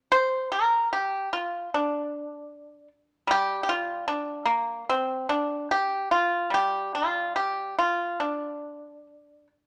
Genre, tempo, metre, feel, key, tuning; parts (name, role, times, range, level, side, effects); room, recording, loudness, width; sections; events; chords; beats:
chinese traditional; 68-76 BPM; 4/4; rubato; G yu mode; A4 = 440 Hz
pipa; solo; 0.1-9.5 s; G3 to C5; -27 LUFS; equal
moderate large studio reverb, RT60 1.1 s; -27 LUFS; mono
0.0-9.7 A section
| 0.08 0.89 1.70 2.50 | 3.29 4.08 4.88 5.69 | 6.52 7.35 8.20 9.07